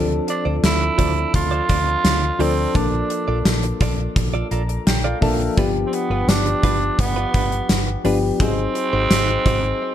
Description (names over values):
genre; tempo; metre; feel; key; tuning
1980s-style pop; 85 BPM; 4/4; straight; unclear; A4 = 442 Hz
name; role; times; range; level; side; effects
soft electric-piano-like synth keys; accompaniment; 0.0-9.9 s; F3 to Bb5; -24 LUFS; left 3 dB; chorus
direct-recorded clean electric guitar; riff; 0.0-9.9 s; D4 to D5; -30 LUFS; right 5 dB; wide subtle chorus, ping-pong delay
vintage muted fingered electric bass; bass; 0.0-9.7 s; G1 to D2; -23 LUFS; equal; none
breathy tenor saxophone; melody; 0.3-9.9 s; B3 to F4; -23 LUFS; right 3 dB; ping-pong delay
gated 80s drum kit; drums; 0.3-9.6 s; hi-hat, kick drum, snare drum; -20 LUFS; equal; none
room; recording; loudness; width
light reverb, small room ambience; dark, warm production; -17 LUFS; side -10 dB against mid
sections
0.0-9.9 A section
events
synth keys fill 4.2-5.6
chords
0.0 Dm7; 2.8 Bbmaj7; 5.6 G7; 8.4 Ab7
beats
0.64 1.34 2.05 | 2.75 3.46 4.16 4.87 | 5.58 6.28 6.99 7.69 | 8.40 9.11 9.81